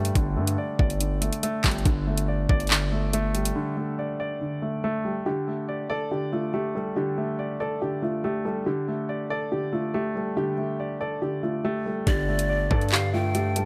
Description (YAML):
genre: hip hop, drill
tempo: 141 BPM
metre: 4/4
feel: half-time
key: unclear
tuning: A4 = 439 Hz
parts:
  - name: dark concert grand piano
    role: accompaniment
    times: 0.0-13.7 s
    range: D3 to D5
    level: -31 LUFS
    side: equal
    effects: none
  - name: distorted 808-style bass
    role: bass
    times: 0.0-3.5, 12.1-13.7 s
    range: G1 to G2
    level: -29 LUFS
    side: equal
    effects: distortion
  - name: drill drum kit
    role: drums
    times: 0.0-3.6, 12.1-13.7 s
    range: handclaps, hi-hat, kick drum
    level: -26 LUFS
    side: equal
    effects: none
  - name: dark upright piano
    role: melody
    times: 5.3-13.7 s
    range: F4 to A4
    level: -32 LUFS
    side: equal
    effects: none
  - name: breathy bright large pan pipes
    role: second line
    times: 12.1-13.7 s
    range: D5 to G5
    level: -31 LUFS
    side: equal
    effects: delay
room: light reverb, small room ambience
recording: none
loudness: -26 LUFS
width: mono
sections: 0.0-5.3 A section; 5.3-13.7 B section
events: break 3.6-5.3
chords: 0.0 Gsus2